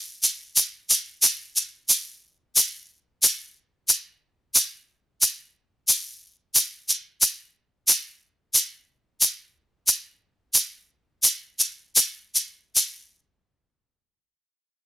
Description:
andean folk; 90 BPM; 2/4; straight
egg shaker; percussion; 0.2-13.1 s; -17 LUFS; equal
little or no reverb; dry, close 1970s-style studio recording; -20 LUFS; side -17 dB against mid
0.0-1.9 A section; 1.9-12.8 B section; 12.8-14.9 C section
slowing down 9.9-12.8

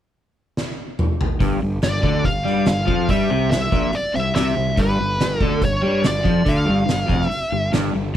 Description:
blues rock power trio and southern rock; 142 BPM; 4/4; straight; G mixolydian; A4 = 440 Hz
oversized low-tuned drum kit; drums; 0.6-7.8 s; hi-hat, kick drum, snare drum, toms; -22 LUFS; equal
crunchy overdriven guitar; riff; 1.4-8.1 s; F2 to G3; -21 LUFS; equal
fuzz fingered electric bass; bass; 1.4-8.2 s; F1 to G2; -24 LUFS; equal; overdrive
fuzz lead guitar; melody; 1.8-7.7 s; B4 to F5; -23 LUFS; equal; wah, distortion
little or no reverb; -17 LUFS; side -11 dB against mid
0.0-1.4 A section; 1.4-8.2 B section
drum fill 0.6-1.4
0.0 N.C.; 1.4 G5; 3.1 C7; 4.8 G7

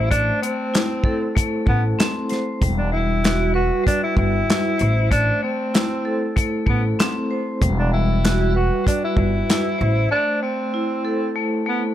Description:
hip hop, boom-bap hip-hop; 96 BPM; 4/4; swing 55% on 16ths; A4 = 439 Hz
breathy tenor saxophone; melody; 0.0-11.8 s; B3 to F#4; -24 LUFS; equal; high-pass filter, low-pass filter, tape echo
vibraphone with hard mallets; accompaniment; 0.0-11.9 s; G3 to C5; -23 LUFS; equal; cassette tape, high-pass filter, low-pass filter
upright bass; bass; 0.0-10.0 s; E1 to A1; -21 LUFS; equal
warm soul drum kit; drums; 0.1-9.7 s; handclaps, hi-hat, kick drum, snare drum; -20 LUFS; equal
small room ambience; -18 LUFS; side -12 dB against mid
0.0-11.9 A section
break 10.1-11.9
0.0 Am; 2.6 Emadd9; 4.8 Am; 7.6 Emadd9; 9.8 Am

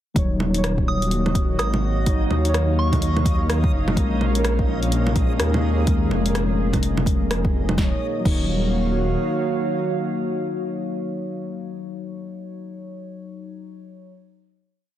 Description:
future garage; 126 BPM; 4/4; swing 61% on 16ths; Eb minor; A4 = 440 Hz
muted felt-like synth keys; accompaniment; 0.1-14.1 s; Gb3 to Db5; -28 LUFS; left 2 dB; chorus, vintage 12-bit sampler grit, sidechain pumping, analog delay
warbly tape-like pad; sustained chords; 0.9-11.6 s; Bb2 to F5; -28 LUFS; equal; chorus, built-in reverb, vintage 12-bit sampler grit, sidechain pumping
dark detuned saw bass; bass; 0.2-9.2 s; Eb1 to Eb2; -22 LUFS; equal; sidechain pumping
deep house drum kit; drums; 0.2-8.4 s; bongos, crash cymbal, hi-hat, rim click, snare drum; -26 LUFS; right 1 dB; overdrive
electronic kick drum; drums; 0.2-8.4 s; -21 LUFS; equal; overdrive
backwards swelling texture; texture; 1.2-7.8 s; Eb4 to Eb5; -35 LUFS; right 3 dB; built-in reverb
soft synth bell; melody; 0.9-3.5 s; Db6 to Eb6; -31 LUFS; right 1 dB; chorus, analog delay
light reverb; dense, heavily limited modern master; -19 LUFS; side -12 dB against mid
0.2-7.8 chorus; 7.8-11.6 final chord
0.2 Ebm7; 4.0 Bbm7; 7.8 Ebm7

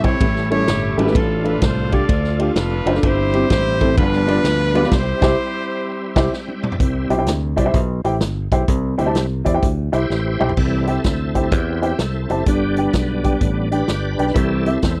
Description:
uptempo gospel; 127 BPM; 4/4; swing 64% on 8ths; C major; A4 = 439 Hz
warm horn section; melody; 0.0-6.3 s; D4 to D5; -24 LUFS; equal
warm upright piano; accompaniment; 0.0-15.0 s; G2 to A5; -23 LUFS; equal
bright tonewheel organ; sustained chords; 0.0-15.0 s; D3 to G5; -27 LUFS; equal; slow rotary speaker, chorus vibrato
fingered electric bass; bass; 0.0-15.0 s; F1 to E2; -24 LUFS; equal
swinging big-band drum kit; drums; 0.0-15.0 s; crash cymbal, hi-hat, kick drum, ride cymbal, snare drum, toms; -22 LUFS; equal
little or no reverb; dry, close 1970s-style studio recording; -18 LUFS; mono
0.0-6.8 A section; 6.8-10.6 B section; 10.6-15.0 C section
band accent 4.9-6.8; tonewheel organ fill 6.1-6.8; drum fill 6.3-6.8, 10.1-10.6; tonewheel organ solo 6.8-10.6, 10.6-15.0
0.2 A7; 1.2 Dm/A; 3.0 C/G; 4.0 G7; 4.9 C; 12.5 G; 14.4 C

